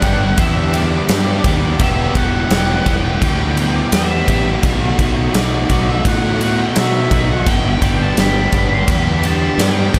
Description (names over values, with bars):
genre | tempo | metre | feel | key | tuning
rock, shoegaze and dream pop | 85 BPM | 4/4 | straight | G major | A4 = 440 Hz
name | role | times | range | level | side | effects
octave-fuzz lead guitar | melody | 0.0-10.0 s | D5 to C6 | -26 LUFS | equal | distortion, analog delay
overdriven electric guitar | riff | 0.0-10.0 s | E2 to G4 | -20 LUFS | equal | subtle chorus
fuzz fingered electric bass | bass | 0.0-10.0 s | E1 to B2 | -21 LUFS | equal | overdrive
huge arena drum kit | drums | 0.0-10.0 s | kick drum, ride cymbal, snare drum | -20 LUFS | equal | none
room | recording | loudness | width
moderate huge ambient reverb, RT60 7.1 s | dreamy mix soaked in reverb | -15 LUFS | mono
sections
0.0-10.0 A section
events
none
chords
0.0 Gmaj7; 1.8 Em7; 4.6 B5; 7.5 G